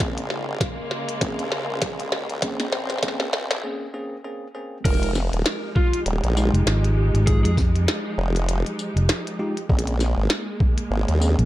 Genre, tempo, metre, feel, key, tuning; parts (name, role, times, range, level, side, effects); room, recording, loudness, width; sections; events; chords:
glitch hop; 99 BPM; 4/4; swing 58% on 16ths; F minor; A4 = 440 Hz
dark studio string section; sustained chords; 0.0-11.5 s; Db3 to G4; -31 LUFS; equal; sidechain pumping
bell-like tine electric piano; stabs; 0.0-11.5 s; Ab3 to Ab4; -31 LUFS; equal; sidechain pumping, tape echo
formant-sweep wobble bass; bass; 0.0-11.4 s; Eb1 to Eb2; -24 LUFS; equal; chorus, high-pass filter
electronic kick drum; drums; 0.0-10.7 s; -22 LUFS; equal; overdrive, studio reverb
glitchy drum kit; drums; 0.0-11.5 s; crash cymbal, hi-hat, snare drum, tambourine; -26 LUFS; equal; studio reverb
lead guitar through a small cranked amp; melody; 4.9-7.5 s; F4 to Bb4; -32 LUFS; equal; overdrive, tape echo
fingered electric bass; bass; 6.5-11.5 s; F1 to F2; -19 LUFS; equal
light reverb, digital ambience; echo-heavy mix, high-pass filter; -20 LUFS; side -15 dB against mid
0.0-4.8 A section; 4.8-11.5 B section
build-up 0.0-4.8; drum fill 0.0-3.6; filter sweep 0.0-4.8; break 3.6-4.8; drop 4.8-11.5
0.0 Bbm9; 4.8 Fm9; 9.7 Bbm9